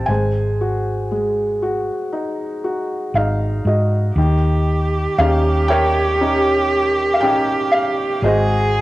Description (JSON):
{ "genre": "acoustic folk-pop ballad", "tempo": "59 BPM", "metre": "4/4", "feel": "straight", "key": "unclear", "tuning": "A4 = 440 Hz", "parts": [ { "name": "felt-muted upright piano", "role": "melody", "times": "0.0-8.8 s", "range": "Eb3 to A5", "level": "-19 LUFS", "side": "equal", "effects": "cassette tape" }, { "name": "hollow-body short-scale fingered electric bass", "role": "bass", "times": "0.0-8.8 s", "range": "Ab1 to Ab2", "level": "-20 LUFS", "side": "equal", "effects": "none" }, { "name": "warm cello", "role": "second line", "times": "4.2-8.8 s", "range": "G4 to Ab4", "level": "-19 LUFS", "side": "right 2 dB", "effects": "cassette tape" } ], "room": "light reverb, small room ambience", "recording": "home recording on cassette", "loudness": "-16 LUFS", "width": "side -17 dB against mid", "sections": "0.0-4.2 A section; 4.2-8.8 B section", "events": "felt piano fill 2.6-4.2", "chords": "0.1 Ab7; 4.2 Eb7; 8.2 Ab7", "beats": "| 0.09 1.11 2.13 3.15 | 4.17 5.19 6.20 7.22 | 8.23" }